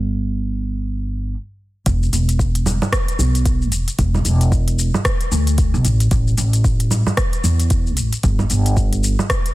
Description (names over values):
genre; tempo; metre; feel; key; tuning
organic downtempo; 113 BPM; 4/4; swing 60% on 16ths; E minor; A4 = 441 Hz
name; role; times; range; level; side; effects
upright bass; bass; 0.0-9.1 s; E1 to E2; -17 LUFS; equal; sidechain pumping
electronic kick drum; drums; 1.9-9.4 s; none; -19 LUFS; equal; none
organic electronic drum kit; drums; 1.9-9.5 s; congas, hi-hat, rim click, shaker; -22 LUFS; right 1 dB; overdrive
room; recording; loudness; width
little or no reverb; dense, heavily limited modern master; -16 LUFS; side -18 dB against mid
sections
0.0-1.9 A section; 1.9-9.5 B section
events
stop 1.3-1.9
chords
none